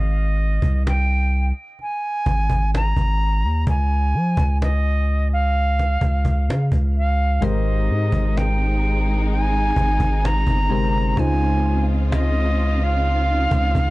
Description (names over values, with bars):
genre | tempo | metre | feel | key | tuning
contemporary R&B | 64 BPM | 4/4 | straight | Ab major | A4 = 440 Hz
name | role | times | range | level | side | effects
silver concert flute | melody | 0.0-13.9 s | Eb5 to Bb5 | -24 LUFS | right 1 dB | none
long sustained 808-style bass | bass | 0.0-13.9 s | G1 to F3 | -19 LUFS | equal | none
cajon | drums | 0.4-13.9 s | none | -26 LUFS | equal | vintage 12-bit sampler grit
soft electric-piano-like synth keys | accompaniment | 7.4-13.9 s | Ab2 to C5 | -26 LUFS | left 2 dB | chorus
warm studio string section | sustained chords | 7.4-13.9 s | Db3 to F4 | -27 LUFS | equal | none
room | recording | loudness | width
studio reverb | none | -17 LUFS | side -20 dB against mid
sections
0.0-13.9 A section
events
none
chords
0.0 Ab; 3.7 Db; 7.4 Abmaj7; 11.2 Dbmaj9